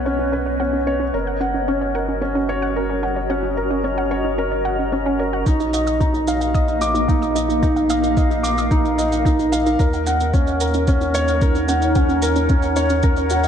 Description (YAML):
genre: piano and strings electronica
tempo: 111 BPM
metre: 4/4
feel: straight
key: unclear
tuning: A4 = 442 Hz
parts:
  - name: granular cloud pad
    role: sustained chords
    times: 0.0-13.5 s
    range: Bb3 to Bb5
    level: -24 LUFS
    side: left 1 dB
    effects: built-in reverb
  - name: felt-muted upright piano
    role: riff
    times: 0.0-13.5 s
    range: C#4 to D6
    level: -21 LUFS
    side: equal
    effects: tape echo
  - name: round analog bass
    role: bass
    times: 0.0-13.5 s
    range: Gb1 to Eb2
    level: -25 LUFS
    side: equal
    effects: sidechain pumping
  - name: wide unison pluck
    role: arpeggios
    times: 0.1-13.5 s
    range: C#4 to Eb6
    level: -27 LUFS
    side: right 2 dB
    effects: sidechain pumping, tape echo
  - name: electronic kick drum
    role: drums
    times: 5.5-13.1 s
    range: none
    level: -18 LUFS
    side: equal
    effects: none
  - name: shaker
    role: drums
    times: 5.5-13.5 s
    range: none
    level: -32 LUFS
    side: right 4 dB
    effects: low-pass filter on perc, low-pass filter on room
room: moderate lush hall reverb, RT60 2.1 s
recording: dark, warm production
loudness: -17 LUFS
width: side -8 dB against mid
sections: 0.0-5.5 A section; 5.5-13.5 B section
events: build-up 5.5-13.5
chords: 0.0 Badd9; 1.1 Gb6; 5.5 Bbsus4; 9.8 Ebm7